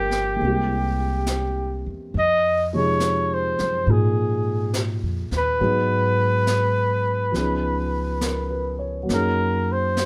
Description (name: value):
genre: jazz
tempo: 69 BPM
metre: 4/4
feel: swing 69% on 8ths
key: unclear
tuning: A4 = 440 Hz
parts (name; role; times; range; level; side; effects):
- breathy trumpet; melody; 0.0-10.1 s; G4 to Eb5; -25 LUFS; equal; none
- dark concert grand piano; accompaniment; 0.0-10.1 s; Bb2 to Db5; -28 LUFS; equal; none
- upright bass; bass; 0.0-10.1 s; G1 to Ab2; -28 LUFS; equal; none
- jazz brush drum kit; drums; 0.1-10.1 s; brushed snare drum, hi-hat, snare drum; -34 LUFS; equal; none
room: light reverb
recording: none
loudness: -22 LUFS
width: mono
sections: 0.0-10.1 A section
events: none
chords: 0.4 C7b13; 2.1 Fm7; 5.6 Abm7; 7.3 Db9; 9.1 Gb6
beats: 0.40 1.26 | 2.13 2.99 3.86 4.72 | 5.59 6.46 7.33 8.21 | 9.08 9.96